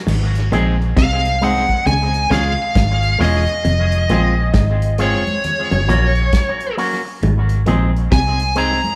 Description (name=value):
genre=roots reggae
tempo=67 BPM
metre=4/4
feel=swing 62% on 16ths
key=Ab mixolydian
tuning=A4 = 440 Hz
part: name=clean electric guitar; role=riff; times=0.1-8.4 s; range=Fb2 to Db3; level=-26 LUFS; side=equal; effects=none
part: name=vintage muted fingered electric bass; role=bass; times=0.1-8.8 s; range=Fb1 to Db2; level=-20 LUFS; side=equal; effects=none
part: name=damped 70s drum kit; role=drums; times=0.1-9.0 s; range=crash cymbal, hi-hat, kick drum, snare drum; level=-24 LUFS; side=equal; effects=tape echo
part: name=congas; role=percussion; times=0.1-9.0 s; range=none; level=-31 LUFS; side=equal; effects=none
part: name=electric guitar with an envelope filter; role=accompaniment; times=0.5-8.8 s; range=Gb3 to Ab4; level=-25 LUFS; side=equal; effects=tremolo, tape echo
part: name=smooth overdriven lead guitar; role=melody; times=1.0-9.0 s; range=Db5 to Bb5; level=-22 LUFS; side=equal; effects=none
room=moderate large studio reverb, RT60 1.3 s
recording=band playing live in one room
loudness=-16 LUFS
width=mono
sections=0.1-9.0 A section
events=none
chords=0.1 Ab; 1.9 Db; 3.6 Fm; 5.4 Gb; 7.2 Ab